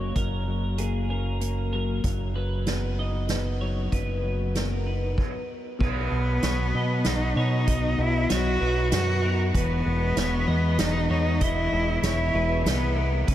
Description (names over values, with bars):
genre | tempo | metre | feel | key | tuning
post-rock | 96 BPM | 3/4 | straight | E lydian | A4 = 440 Hz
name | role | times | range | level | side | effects
clean electric guitar | arpeggios | 0.0-13.3 s | E2 to F#4 | -31 LUFS | left 3 dB | wide subtle chorus, diffuse ambient delay
twelve-string electric guitar | arpeggios | 0.0-13.3 s | G#4 to D#5 | -34 LUFS | equal | lush chorus, diffuse ambient delay
growling fingered electric bass | bass | 0.0-13.3 s | E1 to B2 | -26 LUFS | equal | overdrive
soft-mallet drum kit | drums | 0.2-13.3 s | crash cymbal, hi-hat, kick drum, snare drum | -30 LUFS | right 1 dB | none
clear cello | melody | 5.8-13.3 s | B3 to F#4 | -27 LUFS | equal | diffuse ambient delay
room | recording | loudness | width
moderate huge ambient reverb, RT60 8.8 s | dreamy mix soaked in reverb | -23 LUFS | side -12 dB against mid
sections
0.0-5.8 A section; 5.8-13.3 B section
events
stop 5.2-5.8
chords
0.0 F#add9; 2.0 B/F#; 5.8 B; 9.5 E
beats
| 0.16 0.79 1.41 | 2.04 2.67 3.29 | 3.92 4.55 5.17 | 5.80 6.42 7.05 | 7.67 8.30 8.92 | 9.54 10.17 10.79 | 11.41 12.04 12.66 | 13.28